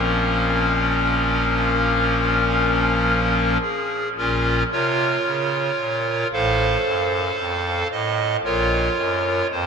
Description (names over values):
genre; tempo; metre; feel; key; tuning
classical, chorale-style piece for pipe organ; 54-57 BPM; 4/4; straight; Bb minor; A4 = 438 Hz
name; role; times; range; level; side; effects
pipe organ, clarinet reed; solo; 0.0-9.7 s; A1 to F5; -18 LUFS; equal; none
room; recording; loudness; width
wet huge ambient reverb, RT60 9.2 s; in a vast, echoing space; -18 LUFS; side -6 dB against mid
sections
0.0-4.2 A section; 4.2-9.7 B section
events
none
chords
0.0 Bbm; 6.3 F/A; 8.4 Bbm